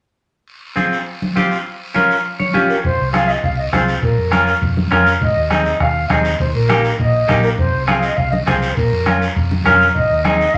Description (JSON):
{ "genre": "latin, cumbia", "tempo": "202 BPM", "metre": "4/4", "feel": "straight", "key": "F minor", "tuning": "A4 = 440 Hz", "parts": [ { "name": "guiro", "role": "percussion", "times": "0.5-10.6 s", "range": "none", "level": "-31 LUFS", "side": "equal", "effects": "none" }, { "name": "clean electric guitar", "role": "accompaniment", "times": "0.8-10.5 s", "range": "Bb3 to Ab5", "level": "-20 LUFS", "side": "equal", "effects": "spring reverb" }, { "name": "congas", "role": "percussion", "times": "0.8-10.4 s", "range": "none", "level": "-25 LUFS", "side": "equal", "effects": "none" }, { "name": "mellow concert flute", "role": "melody", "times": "2.7-10.6 s", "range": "Bb4 to F5", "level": "-21 LUFS", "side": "equal", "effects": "none" }, { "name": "hollow-body short-scale fingered electric bass", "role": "bass", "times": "2.8-10.6 s", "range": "F1 to F2", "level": "-22 LUFS", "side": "equal", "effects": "none" }, { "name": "bombo", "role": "percussion", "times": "2.8-10.6 s", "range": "none", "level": "-24 LUFS", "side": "equal", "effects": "none" } ], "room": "wet studio ambience, RT60 0.5 s", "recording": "none", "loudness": "-16 LUFS", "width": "mono", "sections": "0.5-2.8 A section; 2.8-10.6 B section", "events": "clean electric guitar fill 2.2-2.8", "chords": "0.5 Fm; 1.7 Bbm; 2.8 Fm; 4.0 Bbm; 5.2 Ab; 6.4 Eb; 7.6 Fm; 8.8 Bbm; 10.0 Ab" }